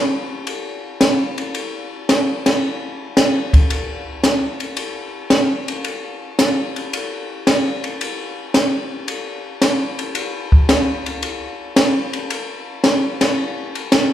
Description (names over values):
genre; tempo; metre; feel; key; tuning
jazz; 112 BPM; 4/4; swing 69% on 8ths; none; none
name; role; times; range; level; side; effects
compact cocktail drum kit; drums; 0.5-14.1 s; hi-hat, kick drum, ride cymbal, snare drum; -17 LUFS; equal; none
room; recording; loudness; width
wet recital hall reverb, RT60 1.6 s; recorded in a church or concert hall; -17 LUFS; side -11 dB against mid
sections
0.0-14.1 A section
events
none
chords
none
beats
0.47 1.00 | 1.54 2.08 2.62 3.16 | 3.69 4.23 4.77 5.31 | 5.85 6.38 6.92 7.46 | 8.00 8.54 9.07 9.61 | 10.15 10.69 11.22 11.76 | 12.30 12.84 13.37 13.91